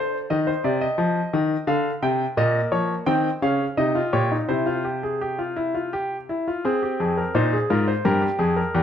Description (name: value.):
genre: classical, baroque-style 3-part fugue for grand piano.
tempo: 86 BPM.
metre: 3/4.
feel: straight.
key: F minor.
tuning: A4 = 440 Hz.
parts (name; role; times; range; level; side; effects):
clear grand piano; solo; 0.0-8.8 s; E2 to G5; -20 LUFS; left 1 dB; none.
room: wet stone room reverb, RT60 1.1 s.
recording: none.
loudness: -20 LUFS.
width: side -9 dB against mid.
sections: 0.0-6.6 A section; 6.6-8.8 B section.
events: none.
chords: 0.3 Cm; 1.7 Csus24; 2.4 Gm7b5/Bb; 4.5 C; 6.6 Fm; 8.0 Fmadd9.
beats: | 0.30 0.99 1.68 | 2.37 3.07 3.77 | 4.48 5.21 5.92 | 6.64 7.34 8.04 | 8.73.